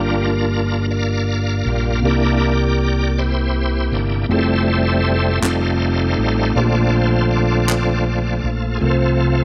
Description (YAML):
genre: slow gospel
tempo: 53 BPM (dotted quarters)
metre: 6/8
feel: straight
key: F major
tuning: A4 = 440 Hz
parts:
  - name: mellow tine electric piano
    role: accompaniment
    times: 0.0-9.4 s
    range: G2 to C5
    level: -23 LUFS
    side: equal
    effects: none
  - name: bright tonewheel organ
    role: sustained chords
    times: 0.0-9.4 s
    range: D3 to F5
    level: -23 LUFS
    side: equal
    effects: slow rotary speaker, chorus vibrato
  - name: fingered electric bass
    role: bass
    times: 0.0-9.4 s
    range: F1 to C2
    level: -22 LUFS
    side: equal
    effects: none
  - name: group handclap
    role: percussion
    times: 5.4-8.0 s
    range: none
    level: -25 LUFS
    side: equal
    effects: none
room: light reverb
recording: none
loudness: -18 LUFS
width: mono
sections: 0.0-9.4 A section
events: tonewheel organ solo 0.0-9.4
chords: 0.0 Gm7; 2.0 C7; 4.3 Fmaj7; 5.4 F7; 6.6 Bbmaj7; 8.8 F/C